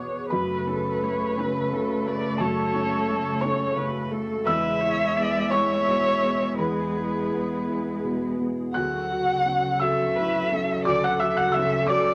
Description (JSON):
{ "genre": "neoclassical piano and strings", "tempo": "57 BPM (dotted quarters)", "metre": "6/8", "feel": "rubato", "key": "F# minor", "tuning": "A4 = 440 Hz", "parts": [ { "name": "muted violin", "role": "melody", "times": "0.0-12.1 s", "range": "A4 to F#5", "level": "-28 LUFS", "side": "equal", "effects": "none" }, { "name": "muted cello", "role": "second line", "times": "0.0-12.1 s", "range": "F#3 to A3", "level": "-34 LUFS", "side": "equal", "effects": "none" }, { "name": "felt-muted upright piano", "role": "accompaniment", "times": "0.0-12.1 s", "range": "D2 to F#6", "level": "-30 LUFS", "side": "equal", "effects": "none" }, { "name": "hollow soft pad", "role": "sustained chords", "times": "0.0-12.1 s", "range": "C#3 to B4", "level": "-37 LUFS", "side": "equal", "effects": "ensemble chorus" }, { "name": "muted viola", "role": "accompaniment", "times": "0.3-12.1 s", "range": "G#4 to E5", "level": "-34 LUFS", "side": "equal", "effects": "none" } ], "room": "wet studio reverb, RT60 0.6 s", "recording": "none", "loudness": "-25 LUFS", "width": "mono", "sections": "0.3-12.1 A section", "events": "none", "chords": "0.3 F#m; 4.5 E; 8.8 Dmaj7" }